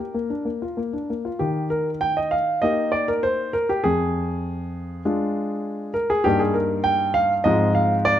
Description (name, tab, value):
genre	classical-period piano sonatina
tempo	98 BPM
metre	4/4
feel	rubato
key	Eb major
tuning	A4 = 438 Hz
part	warm grand piano	solo	0.0-8.2 s	F2 to G5	-20 LUFS	equal	none
room	moderate recital hall reverb, RT60 1.4 s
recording	close, detailed microphones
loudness	-20 LUFS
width	side -11 dB against mid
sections	0.0-1.4 A section; 1.4-8.2 B section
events	none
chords	0.1 Bb; 1.4 Eb; 3.8 Ddim/F; 6.3 Eb/G; 7.5 Fm/Ab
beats	0.14 0.77 | 1.40 2.02 2.63 3.24 | 3.85 4.45 5.05 5.66 | 6.26 6.85 7.45 8.07